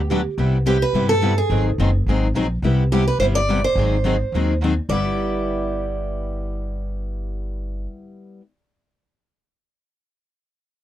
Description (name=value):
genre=acoustic string swing (jazz manouche)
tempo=212 BPM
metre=4/4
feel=swing 58% on 8ths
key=G major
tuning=A4 = 440 Hz
part: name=picked steel-string acoustic guitar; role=melody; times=0.0-7.9 s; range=G4 to D5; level=-23 LUFS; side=right 3 dB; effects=none
part: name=upright bass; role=bass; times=0.0-7.9 s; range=Gb1 to G2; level=-22 LUFS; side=equal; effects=none
part: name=picked steel-string acoustic guitar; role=accompaniment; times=0.1-8.4 s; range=C3 to Ab4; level=-25 LUFS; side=left 5 dB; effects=none
part: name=picked swing-style acoustic guitar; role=accompaniment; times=0.1-8.4 s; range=C3 to Ab4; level=-30 LUFS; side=right 7 dB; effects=none
room=light reverb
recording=dry, close 1970s-style studio recording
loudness=-18 LUFS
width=side -12 dB against mid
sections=0.4-4.9 A section; 4.9-7.2 B section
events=none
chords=0.4 Cmaj7; 1.5 Ab9; 2.6 Cmaj7; 3.8 Ab7; 4.9 G6